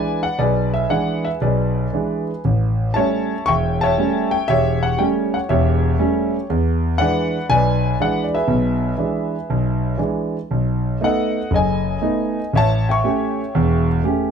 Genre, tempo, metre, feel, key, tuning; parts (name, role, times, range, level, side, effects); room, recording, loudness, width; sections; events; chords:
solo jazz; 119 BPM; 4/4; swing 68% on 8ths, rubato; E mixolydian; A4 = 440 Hz
warm concert grand piano; solo; 0.0-14.3 s; E1 to C#6; -17 LUFS; equal
light reverb; dark, warm production; -17 LUFS; side -7 dB against mid
0.0-14.3 A section
0.0 E7; 2.4 A7; 6.5 E7; 10.5 B7; 12.5 A7